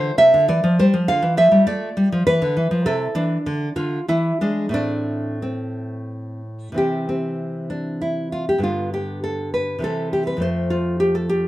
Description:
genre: classical, baroque-style dance for nylon-string guitar.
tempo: 87-104 BPM.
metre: 3/4.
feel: rubato.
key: A minor, C major from 6.8 s.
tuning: A4 = 441 Hz.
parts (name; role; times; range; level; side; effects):
nylon-string guitar; solo; 0.0-11.5 s; F2 to F5; -18 LUFS; equal; none.
room: moderate studio reverb, RT60 0.5 s.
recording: none.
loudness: -18 LUFS.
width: side -15 dB against mid.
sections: 0.0-6.8 A section; 6.8-11.5 A section.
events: none.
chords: 0.0 F5; 1.1 Dmadd9; 2.3 E5; 2.8 Am/C; 3.5 N.C.; 4.1 E7; 4.7 Am; 6.8 C; 8.6 G; 9.8 C; 10.4 F.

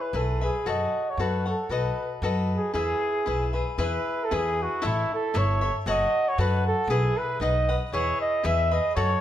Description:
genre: mexican folk, mariachi.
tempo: 116 BPM.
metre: 2/4.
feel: swing 53% on 8ths.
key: E major.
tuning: A4 = 440 Hz.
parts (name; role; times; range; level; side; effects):
mellow trumpet; melody; 0.0-9.2 s; E4 to E5; -26 LUFS; right 1 dB; none.
cavaquinho; accompaniment; 0.0-9.2 s; D#4 to F#5; -30 LUFS; left 4 dB; none.
upright bass; bass; 0.1-9.1 s; F#1 to F#2; -27 LUFS; equal; none.
room: moderate recital hall reverb, RT60 1.5 s.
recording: none.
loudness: -23 LUFS.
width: side -11 dB against mid.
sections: 0.0-3.8 A section; 3.8-9.2 A section.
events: none.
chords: 0.0 E; 0.7 F#m; 1.7 B7; 2.7 E; 4.8 A; 5.9 F#m; 6.9 E/B; 7.4 B; 7.9 E.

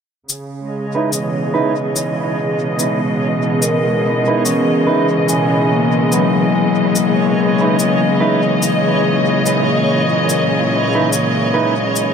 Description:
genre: ambient dub.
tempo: 72 BPM.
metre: 4/4.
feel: swing 58% on 16ths.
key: C# dorian.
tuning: A4 = 440 Hz.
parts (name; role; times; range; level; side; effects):
clear symphonic string section; sustained chords; 0.3-12.1 s; A#2 to D#5; -16 LUFS; right 1 dB; low-pass filter.
shaker; drums; 0.3-12.1 s; none; -21 LUFS; left 4 dB; overdrive.
backwards swelling texture; texture; 0.7-12.1 s; C#5; -25 LUFS; right 1 dB; built-in reverb.
clean electric guitar; stabs; 0.9-11.7 s; D#4 to B4; -22 LUFS; right 4 dB; low-pass filter, dub echo.
vibraphone with medium mallets; arpeggios; 3.6-12.1 s; F#3 to G#5; -18 LUFS; left 6 dB; low-pass filter, dub echo.
room: moderate huge ambient reverb, RT60 4.1 s.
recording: none.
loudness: -13 LUFS.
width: side -7 dB against mid.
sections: 0.3-12.1 A section.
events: filter sweep on string section 0.3-12.1.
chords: 0.3 C#m9.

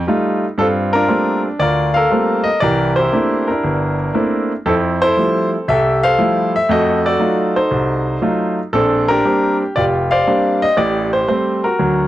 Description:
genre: solo jazz.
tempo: 118 BPM.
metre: 4/4.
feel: swing 69% on 8ths.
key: G minor.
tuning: A4 = 440 Hz.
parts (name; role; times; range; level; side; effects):
bright grand piano; solo; 0.1-12.1 s; F1 to F5; -14 LUFS; equal; none.
room: light reverb.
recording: cassette tape.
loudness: -14 LUFS.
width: side -14 dB against mid.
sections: 0.6-12.1 A section.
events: none.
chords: 0.0 F9; 0.6 Gm11; 2.6 C13; 4.7 Fmaj9; 6.7 F7b9; 8.7 Bb69; 10.8 Am7.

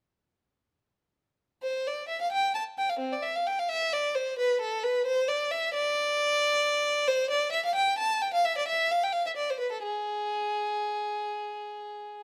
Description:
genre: classical, baroque-style suite movement for unaccompanied violin.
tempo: 87 BPM (dotted quarters).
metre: 12/8.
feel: rubato.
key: unclear.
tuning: A4 = 440 Hz.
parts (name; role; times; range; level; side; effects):
rich violin; solo; 1.6-12.2 s; C4 to A5; -29 LUFS; equal; none.
room: moderate stone room reverb, RT60 1.2 s.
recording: close, detailed microphones.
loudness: -28 LUFS.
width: mono.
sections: 1.6-12.2 A section.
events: none.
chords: none.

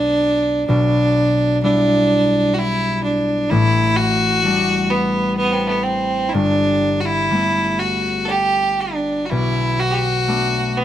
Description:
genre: celtic folk, Celtic slow air.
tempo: 63 BPM.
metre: 3/4.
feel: uneven beats, rubato.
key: unclear.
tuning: A4 = 441 Hz.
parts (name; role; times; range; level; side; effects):
clear fiddle; melody; 0.0-10.8 s; A3 to A4; -17 LUFS; right 1 dB; none.
concert harp; accompaniment; 0.0-10.8 s; G1 to E4; -20 LUFS; left 2 dB; none.
room: light reverb.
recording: close, detailed microphones.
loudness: -15 LUFS.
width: side -11 dB against mid.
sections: 0.0-10.8 A section.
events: none.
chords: 0.0 Bm7; 0.7 G6/B; 3.5 Dsus4/A; 6.3 Gadd9; 9.3 Bm7.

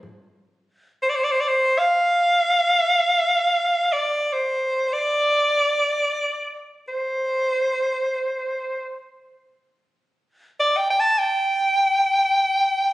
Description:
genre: mongolian traditional.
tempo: 77 BPM.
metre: 4/4.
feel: straight.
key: C zhi mode.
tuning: A4 = 440 Hz.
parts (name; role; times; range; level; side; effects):
clear soprano saxophone; melody; 1.0-12.9 s; C5 to A5; -18 LUFS; equal; none.
room: moderate recital hall reverb, RT60 1.5 s.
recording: recorded on a phone in the room, studio ambience.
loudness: -18 LUFS.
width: side -16 dB against mid.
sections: 0.4-12.9 A section.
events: none.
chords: none.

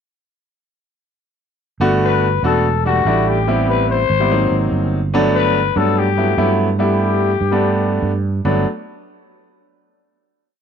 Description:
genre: Afro-Cuban jazz.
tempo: 145 BPM.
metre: 4/4.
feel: straight.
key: G major.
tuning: A4 = 440 Hz.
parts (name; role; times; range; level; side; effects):
clear concert grand piano; accompaniment; 1.8-8.6 s; Gb3 to F#4; -18 LUFS; equal; none.
sustaining fretless electric bass; bass; 1.8-8.6 s; E1 to G2; -19 LUFS; right 3 dB; none.
growling trumpet; melody; 2.0-8.0 s; F#4 to C5; -19 LUFS; left 10 dB; none.
room: small room ambience.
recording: none.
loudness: -14 LUFS.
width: side -7 dB against mid.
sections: 1.8-8.4 A section; 8.4-10.1 final chord.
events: none.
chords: 1.8 Gmaj7; 2.6 Em11; 3.5 Am9; 4.3 Ab9; 5.1 Gmaj7.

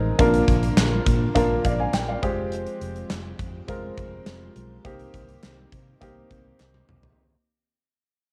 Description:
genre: 1980s-style pop.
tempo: 103 BPM.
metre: 4/4.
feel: straight.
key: unclear.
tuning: A4 = 440 Hz.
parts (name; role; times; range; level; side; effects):
warm grand piano; accompaniment; 0.0-7.2 s; Ab3 to Ab5; -27 LUFS; equal; cassette tape.
string machine, violins; sustained chords; 0.0-7.2 s; C3 to G4; -39 LUFS; equal; none.
vintage muted fingered electric bass; bass; 0.0-7.1 s; F1 to C3; -30 LUFS; equal; none.
gated 80s drum kit; drums; 0.2-7.2 s; hi-hat, kick drum, snare drum, toms; -26 LUFS; equal; cassette tape.
group handclap; percussion; 0.8-6.7 s; none; -40 LUFS; equal; none.
room: light reverb, studio reverb.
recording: home recording on cassette.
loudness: -23 LUFS.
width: mono.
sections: 0.0-7.2 A section.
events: fade-out 0.0-7.2; drum fill 6.6-7.2.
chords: 0.2 Bb; 2.2 Fmadd9; 4.9 Cm7.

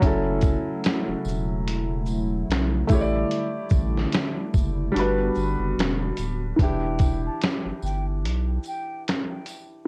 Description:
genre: lo-fi hip hop.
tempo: 73 BPM.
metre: 4/4.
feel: swing 56% on 16ths.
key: E dorian.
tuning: A4 = 440 Hz.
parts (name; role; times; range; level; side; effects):
felt-muted upright piano; accompaniment; 0.0-9.9 s; E3 to D5; -30 LUFS; equal; cassette tape.
hollow soft pad; sustained chords; 0.0-6.6 s; C#3 to F#4; -34 LUFS; equal; chorus.
saturated sub bass; bass; 0.0-8.6 s; D1 to B1; -29 LUFS; equal; transformer saturation.
lo-fi sampler-style drum kit; drums; 0.0-9.7 s; finger snaps, hi-hat, kick drum, shaker, snare drum; -26 LUFS; equal; none.
tambourine; percussion; 0.4-9.7 s; none; -51 LUFS; equal; none.
breathy mellow concert flute; melody; 6.6-9.0 s; G5 to A5; -39 LUFS; equal; analog delay.
room: light reverb.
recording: worn, warbling old tape, cassette tape, warbly pitch drift.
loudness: -25 LUFS.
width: mono.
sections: 0.0-6.6 A section; 6.6-9.9 B section.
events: kick muted 5.0-6.6.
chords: 0.0 F#m7; 2.9 A7sus4; 5.0 Gmaj7; 6.6 Em7.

